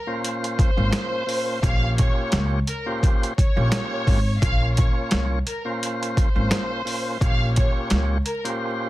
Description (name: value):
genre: hip hop, boom-bap hip-hop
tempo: 86 BPM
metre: 4/4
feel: swing 55% on 16ths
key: Bb dorian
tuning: A4 = 439 Hz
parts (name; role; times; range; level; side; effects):
- warm studio violin section; melody; 0.0-8.4 s; Bb4 to F5; -30 LUFS; equal; high-pass filter, low-pass filter, digital delay
- tonewheel organ; accompaniment; 0.1-8.9 s; Bb2 to Db5; -28 LUFS; equal; overdrive, fast rotary speaker, cassette tape, high-pass filter, low-pass filter
- boom bap sampler-style drum kit; drums; 0.2-8.6 s; hi-hat, kick drum, snare drum; -21 LUFS; equal; overdrive
- upright bass; bass; 0.8-8.2 s; Ab1 to Db2; -23 LUFS; equal; none
room: little or no reverb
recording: dense, heavily limited modern master, vinyl crackle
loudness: -20 LUFS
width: side -16 dB against mid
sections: 0.0-8.9 A section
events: none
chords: 0.0 Bbmadd9; 1.6 Bbm69; 4.4 Bbmadd9; 7.2 Bbm69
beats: 0.23 0.93 | 1.63 2.33 3.02 3.72 | 4.42 5.12 5.81 6.51 | 7.21 7.91 8.61